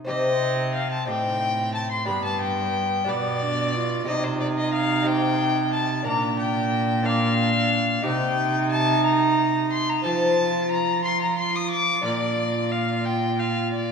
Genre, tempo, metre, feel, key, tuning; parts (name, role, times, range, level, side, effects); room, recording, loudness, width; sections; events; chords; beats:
classical, renaissance-style consort dance; 60 BPM (dotted quarters); 6/8; straight; C dorian; A4 = 436 Hz
lute; accompaniment; 0.0-13.9 s; G2 to D5; -30 LUFS; left 2 dB
dark violin; melody; 0.1-13.9 s; C5 to Eb6; -24 LUFS; left 3 dB
warm viola; second line; 0.1-13.9 s; B3 to F4; -28 LUFS; right 6 dB
dark cello; bass; 0.1-13.9 s; G2 to F3; -27 LUFS; right 1 dB
wet church reverb, RT60 2.6 s; minimal, uncompressed stereo recording; -21 LUFS; side -6 dB against mid
0.1-13.9 A section
0.1 Cm; 2.1 G; 4.1 Cm; 6.1 Bb; 8.1 Cm; 10.1 F; 12.0 Bb
| 0.08 1.08 | 2.08 3.08 | 4.07 5.07 | 6.06 7.06 | 8.05 9.05 | 10.05 11.05 | 12.05 13.05